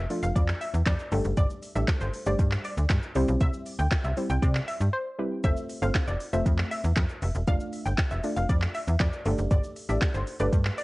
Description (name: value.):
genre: dance-pop.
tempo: 118 BPM.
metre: 4/4.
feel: straight.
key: C major.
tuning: A4 = 443 Hz.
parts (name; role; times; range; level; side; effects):
wide unison pluck; melody; 0.0-10.8 s; C5 to G5; -35 LUFS; left 1 dB; cassette tape, analog delay.
slap-like FM bass; bass; 0.0-10.7 s; E1 to C3; -27 LUFS; equal; sidechain pumping.
soft round pluck; accompaniment; 0.1-10.8 s; F3 to D5; -32 LUFS; equal; chorus, sidechain pumping, plate reverb.
smooth R&B drum kit; drums; 0.1-10.8 s; handclaps, hi-hat, kick drum, shaker, snare drum; -27 LUFS; equal; cassette tape.
room: little or no reverb.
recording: home recording on cassette, nothing above 10.6 kHz.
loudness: -24 LUFS.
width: side -21 dB against mid.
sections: 0.0-10.8 A section.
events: break 4.9-5.4.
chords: 0.0 Dm/F; 1.1 Gsus2; 3.2 C; 5.4 F; 7.5 Dm/F; 9.3 Gsus2.